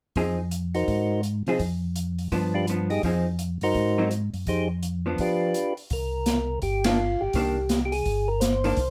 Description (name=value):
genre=soul jazz organ trio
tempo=167 BPM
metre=4/4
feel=swing 64% on 8ths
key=C minor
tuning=A4 = 440 Hz
part: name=vintage hollow-body jazz guitar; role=accompaniment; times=0.2-8.8 s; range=Eb3 to Ab4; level=-29 LUFS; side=equal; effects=none
part: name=mellow tonewheel organ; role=bass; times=0.2-8.9 s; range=G1 to C3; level=-30 LUFS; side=equal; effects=chorus vibrato, slow rotary speaker
part: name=open jazz drum kit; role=drums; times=0.2-8.9 s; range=hi-hat, kick drum, ride cymbal, snare drum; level=-32 LUFS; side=equal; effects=none
part: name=percussive tonewheel organ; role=melody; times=0.7-8.9 s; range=D4 to Eb5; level=-28 LUFS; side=equal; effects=slow rotary speaker
room=light reverb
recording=band playing live in one room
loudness=-26 LUFS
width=mono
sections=0.2-5.9 A section; 5.9-8.9 B section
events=band accent 6.8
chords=0.2 Fm7; 0.9 Ab7; 1.6 N.C.; 2.3 G7; 3.0 Fm7; 3.8 Ab7; 4.5 Fm7; 5.9 Cm9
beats=| 0.16 0.52 0.88 1.24 | 1.60 1.96 2.31 2.67 | 3.03 3.39 3.75 4.11 | 4.47 4.83 5.19 5.54 | 5.90 6.26 6.62 6.98 | 7.34 7.70 8.05 8.41 | 8.77